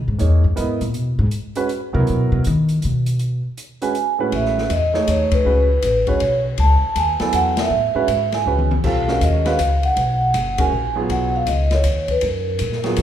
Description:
modal jazz; 160 BPM; 3/4; swing 64% on 8ths; A lydian from 4.3 s; A4 = 441 Hz
upright bass; bass; 0.0-13.0 s; F#1 to D#3; -19 LUFS; left 1 dB
warm concert grand piano; accompaniment; 0.2-13.0 s; A2 to D#5; -23 LUFS; right 3 dB
open jazz drum kit; drums; 0.2-13.0 s; crash cymbal, hi-hat, kick drum, ride cymbal, snare drum, toms; -27 LUFS; left 3 dB
vibraphone with soft mallets; melody; 3.8-13.0 s; A#4 to A5; -20 LUFS; right 1 dB
moderate recital hall reverb, RT60 1.4 s; recorded in a church or concert hall; -16 LUFS; side -10 dB against mid
0.0-4.3 A section; 4.3-13.0 B section
upright bass solo 0.0-4.3; band accent 5.3, 7.5, 10.5; drum fill 8.5-8.8
0.0 Emaj9; 4.3 Amaj9; 8.8 Bmaj9
0.20 0.57 | 0.95 1.32 1.70 | 2.07 2.45 2.82 | 3.20 3.58 3.95 | 4.33 4.70 5.08 | 5.45 5.83 6.21 | 6.58 6.96 7.33 | 7.71 8.09 8.46 | 8.84 9.22 9.59 | 9.97 10.35 10.72 | 11.10 11.47 11.85 | 12.23 12.60 12.98

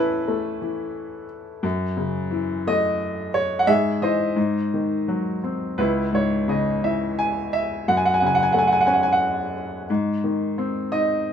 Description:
classical, lyrical solo piano; 88 BPM; 3/4; rubato; A4 = 439 Hz
clear grand piano; solo; 0.0-11.3 s; C#2 to G#5; -20 LUFS; equal
light reverb; -20 LUFS; side -8 dB against mid
0.0-11.3 A section
0.0 Aadd9; 1.6 F#m7; 3.7 G#aug; 4.4 G#7; 5.8 C#m; 7.9 F#m; 9.9 G#
0.29 0.96 | 1.64 2.32 3.00 | 3.68 4.37 5.07 | 5.78 6.49 7.18 | 7.87 8.55 9.22 | 9.89 10.57 11.25

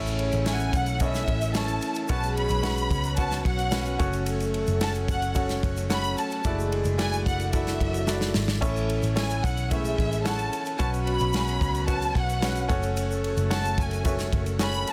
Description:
piano-driven pop; 110 BPM; 4/4; straight; A major; A4 = 439 Hz
mellow French horn section; second line; 0.0-14.8 s; C#3 to A4; -36 LUFS; equal; digital delay
bright upright piano; accompaniment; 0.0-14.9 s; A2 to G#5; -34 LUFS; equal
tonewheel organ; sustained chords; 0.0-14.9 s; E3 to D4; -40 LUFS; equal
vintage muted picked electric bass; bass; 0.0-14.8 s; F#1 to C#2; -31 LUFS; equal
tube shaker; percussion; 0.1-14.9 s; -46 LUFS; equal
natural country drum kit; drums; 0.2-14.9 s; crash cymbal, kick drum, ride cymbal, snare drum; -32 LUFS; equal
warm symphonic violin section; melody; 0.5-14.9 s; E5 to B5; -33 LUFS; equal
light reverb; dense, heavily limited modern master; -26 LUFS; mono
0.0-14.9 A section
drum fill 8.1-8.6
0.0 A; 2.1 Bsus2; 4.0 F#m; 6.4 Dadd9/F#; 8.6 A; 10.8 Bsus2; 12.7 F#m
0.46 1.01 1.55 | 2.09 2.64 3.18 3.73 | 4.27 4.81 5.36 5.90 | 6.45 6.99 7.53 8.07 | 8.62 9.16 9.71 10.25 | 10.79 11.34 11.88 12.43 | 12.97 13.51 14.05 14.60

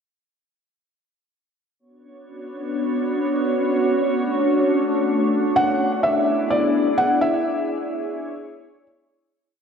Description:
IDM; free time; B dorian; A4 = 440 Hz
glassy FM pad; sustained chords; 2.4-9.3 s; A3 to D5; -20 LUFS; equal; ensemble chorus, built-in reverb
felt-muted upright piano; melody; 5.6-8.8 s; D5 to F#5; -21 LUFS; equal; analog delay
wet lush hall reverb, RT60 2.9 s; dreamy mix soaked in reverb; -18 LUFS; side -6 dB against mid
1.8-9.4 groove
fade-out 6.8-9.4
1.8 Bmadd9; 3.7 Dmaj7; 5.6 E7; 7.5 C#m
free time

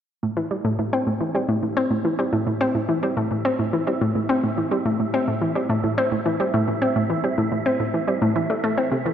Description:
ambient, sequencer-driven space music; 107 BPM; 4/4; straight; A minor; A4 = 440 Hz
analog pluck; riff; 0.2-9.1 s; A2 to C4; -20 LUFS; equal; chorus, tape echo
wind-like tuned noise texture; texture; 2.0-9.1 s; E5; -32 LUFS; right 6 dB; built-in reverb, lush chorus
wet plate reverb, RT60 3.4 s; dreamy mix soaked in reverb, nothing above 11.0 kHz; -20 LUFS; side -9 dB against mid
0.2-9.1 A section
fade-in on synth texture 0.2-9.1
0.2 Am
| 0.23 0.79 1.35 1.91 | 2.47 3.03 3.59 4.16 | 4.71 5.28 5.84 6.40 | 6.96 7.52 8.08 8.64

